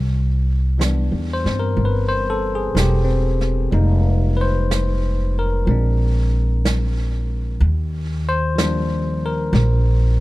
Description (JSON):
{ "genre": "jazz ballad", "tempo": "62 BPM", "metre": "4/4", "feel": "swing 67% on 8ths", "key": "unclear", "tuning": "A4 = 441 Hz", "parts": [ { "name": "upright bass", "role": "bass", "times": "0.0-10.2 s", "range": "E1 to G2", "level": "-18 LUFS", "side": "equal", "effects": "none" }, { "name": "barky tine electric piano", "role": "accompaniment", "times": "0.8-10.2 s", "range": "E3 to C5", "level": "-23 LUFS", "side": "left 2 dB", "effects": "none" }, { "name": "jazz brush drum kit", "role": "drums", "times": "0.8-10.2 s", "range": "brushed snare drum, hi-hat, snare drum", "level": "-27 LUFS", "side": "right 2 dB", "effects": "none" } ], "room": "studio ambience", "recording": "rough home demo mix", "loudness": "-17 LUFS", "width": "side -18 dB against mid", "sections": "0.0-10.2 A section", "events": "none", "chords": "0.0 Cmaj7; 3.7 Fm11; 5.7 Bb9; 7.6 Ebmaj7" }